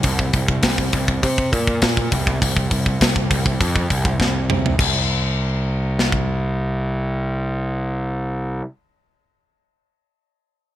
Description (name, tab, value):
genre	heavy metal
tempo	101 BPM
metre	4/4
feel	straight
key	unclear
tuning	A4 = 440 Hz
part	fuzz picked electric bass	bass	0.0-8.6 s	C2 to C3	-20 LUFS	equal	overdrive
part	tight metal drum kit	drums	0.0-6.3 s	crash cymbal, hi-hat, kick drum, snare drum, toms	-19 LUFS	equal	none
room	little or no reverb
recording	bright 1980s-style digital production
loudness	-18 LUFS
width	side -13 dB against mid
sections	0.0-4.8 A section; 4.8-7.1 B section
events	drum fill 4.2-4.8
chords	none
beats	| 0.04 0.63 1.22 1.81 | 2.40 2.99 3.58 4.18 | 4.77 5.36 5.96 6.55